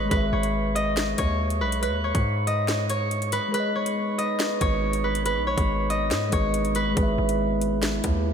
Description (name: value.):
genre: hip hop, drill.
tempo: 140 BPM.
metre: 4/4.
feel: half-time.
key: unclear.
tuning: A4 = 440 Hz.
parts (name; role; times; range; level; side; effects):
concert harp; melody; 0.0-8.3 s; B4 to D#5; -26 LUFS; equal; tape echo.
mellow tine electric piano; accompaniment; 0.0-8.3 s; G#3 to E5; -29 LUFS; left 3 dB; none.
distorted 808-style bass; bass; 0.0-8.3 s; G#1 to G#2; -27 LUFS; equal; distortion.
drill drum kit; drums; 0.1-8.1 s; hi-hat, kick drum, snare drum; -28 LUFS; equal; none.
glass harmonica; sustained chords; 3.5-8.3 s; G#3 to B4; -31 LUFS; right 3 dB; stereo widening.
room: moderate church reverb, RT60 3.8 s.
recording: dreamy mix soaked in reverb.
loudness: -22 LUFS.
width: side -7 dB against mid.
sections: 0.0-8.3 A section.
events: kick muted 3.5-4.4.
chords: 0.1 E/G#; 3.5 G#m; 7.0 E/G#.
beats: | 0.11 0.54 0.97 1.40 | 1.83 2.25 2.68 3.11 | 3.54 3.97 4.40 4.83 | 5.25 5.68 6.11 6.54 | 6.97 7.40 7.83 8.26.